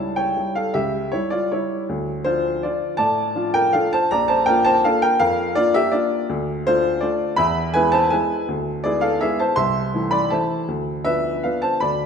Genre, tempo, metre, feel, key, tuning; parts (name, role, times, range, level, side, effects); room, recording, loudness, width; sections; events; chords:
classical, piano waltz; 163 BPM; 3/4; uneven beats, rubato; A4 = 439 Hz
warm upright piano; solo; 0.0-12.1 s; Bb1 to C6; -18 LUFS; equal
moderate concert hall reverb, RT60 1.9 s; minimal, uncompressed stereo recording; -18 LUFS; side -6 dB against mid
0.0-12.1 A section
0.0 A7/C#; 1.9 Dm; 4.1 Bb; 6.3 Dm; 7.4 E; 8.5 E7/D; 9.6 Am/C; 10.7 Bdim/D